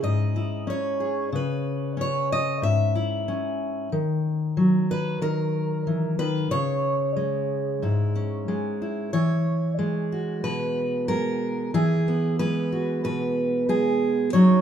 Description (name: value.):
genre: folk, solo fingerstyle acoustic guitar.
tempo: 92 BPM.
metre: 4/4.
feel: straight.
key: unclear.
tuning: A4 = 439 Hz.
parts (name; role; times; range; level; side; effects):
fingerpicked steel-string acoustic guitar; solo; 0.0-14.6 s; G#2 to E5; -22 LUFS; equal; none.
room: light reverb.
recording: minimal, uncompressed stereo recording.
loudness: -22 LUFS.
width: side -9 dB against mid.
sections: 0.0-9.1 A section; 9.1-14.6 B section.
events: none.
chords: 0.0 C#m; 3.9 D#m; 6.5 C#m; 9.1 Eadd9.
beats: 0.02 0.68 | 1.33 1.98 2.63 3.27 | 3.92 4.57 5.22 5.87 | 6.52 7.17 7.82 8.48 | 9.13 9.79 10.44 11.09 | 11.74 12.39 13.04 13.69 | 14.34.